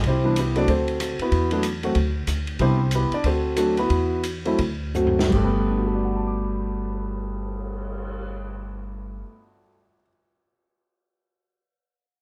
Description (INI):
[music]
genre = jazz piano trio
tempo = 160-188 BPM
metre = 4/4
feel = swing 63% on 8ths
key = G major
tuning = A4 = 441 Hz
[part]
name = upright bass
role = bass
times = 0.0-9.2 s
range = G1 to E2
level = -28 LUFS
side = equal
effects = none
[part]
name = open jazz drum kit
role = drums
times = 0.0-8.2 s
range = crash cymbal, cymbal swell, hi-hat, kick drum, ride cymbal, rim click, snare drum, toms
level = -33 LUFS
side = equal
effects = none
[part]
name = warm concert grand piano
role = melody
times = 0.1-10.1 s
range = G2 to D6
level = -26 LUFS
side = equal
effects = none
[sound]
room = light reverb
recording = none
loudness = -23 LUFS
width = mono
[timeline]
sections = 0.0-5.3 A section; 5.3-8.3 B section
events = slowing down 2.6-5.3; drum fill 4.9-5.3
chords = 0.0 Cmaj7; 0.7 D7; 1.3 Esus4; 2.0 N.C.; 2.6 Cmaj7; 3.2 D7; 3.9 Esus2; 4.6 D7; 5.3 Gmaj9